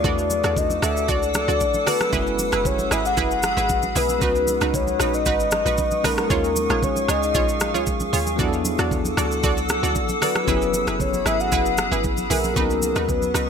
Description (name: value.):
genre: amapiano.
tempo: 115 BPM.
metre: 4/4.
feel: straight.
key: unclear.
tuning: A4 = 435 Hz.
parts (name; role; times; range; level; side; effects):
soft octave-layered synth lead; melody; 0.0-13.5 s; Bb4 to Gb5; -23 LUFS; left 3 dB; chorus.
bell-like tine electric piano; accompaniment; 0.0-13.5 s; F#3 to B4; -28 LUFS; left 1 dB; medium stereo tremolo.
glassy FM pad; sustained chords; 0.0-13.5 s; Cb4 to E6; -27 LUFS; left 1 dB; ensemble chorus, built-in reverb, sidechain pumping.
analog pluck; stabs; 0.0-13.5 s; Eb4 to D5; -26 LUFS; right 5 dB; chorus, ping-pong delay.
deep log drum bass; bass; 0.0-13.5 s; Gb1 to E2; -27 LUFS; equal; none.
smooth R&B drum kit; drums; 0.0-13.5 s; hi-hat, kick drum, rim click, shaker; -26 LUFS; equal; none.
congas; percussion; 0.0-13.3 s; none; -33 LUFS; right 4 dB; none.
room: light reverb, digital ambience.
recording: none.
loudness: -19 LUFS.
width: side -7 dB against mid.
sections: 0.0-13.5 A section.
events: none.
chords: 0.0 E9sus4; 2.1 Gb9sus4; 4.2 Db9sus4; 6.3 Eb9sus4; 8.4 E9sus4; 10.5 Gb9sus4; 12.6 Db9sus4.